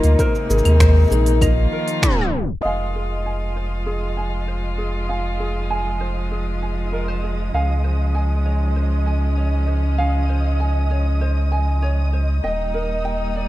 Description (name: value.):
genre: folktronica.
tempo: 98 BPM.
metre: 4/4.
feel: straight.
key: unclear.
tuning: A4 = 443 Hz.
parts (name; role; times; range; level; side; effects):
vibraphone with soft mallets; second line; 0.0-2.7, 12.4-12.6 s; Eb4 to Eb6; -24 LUFS; left 4 dB; ping-pong delay.
muted string quartet; sustained chords; 0.0-13.5 s; C3 to F4; -27 LUFS; equal; none.
ukulele; arpeggios; 0.0-13.5 s; Eb4 to Ab5; -28 LUFS; right 1 dB; low-pass filter, digital delay.
warm sub bass; bass; 0.0-13.5 s; Eb1 to Eb2; -19 LUFS; equal; none.
organic electronic drum kit; drums; 0.0-2.6 s; claves, finger snaps, hi-hat, shaker; -26 LUFS; equal; none.
electronic kick drum; drums; 0.2-2.1 s; none; -20 LUFS; equal; none.
flickering grainy texture; texture; 2.6-13.5 s; Eb5 to Eb7; -32 LUFS; right 2 dB; built-in reverb.
room: little or no reverb.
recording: rough home demo mix, tape stop.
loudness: -18 LUFS.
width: side -16 dB against mid.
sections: 0.0-2.6 A section; 2.6-13.5 B section.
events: filter sweep on ukulele 0.0-2.6; band accent 2.0-2.3; tape stop 2.0-2.6.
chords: 0.2 Abadd9; 1.4 Bbsus4; 2.6 Fm; 7.5 Dbmaj7; 12.4 Ebmaj7.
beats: | 0.19 0.80 1.41 2.03 | 2.64 3.25 3.86 4.47 | 5.09 5.70 6.31 6.92 | 7.54 8.15 8.76 9.37 | 9.98 10.60 11.21 11.82 | 12.43 13.05.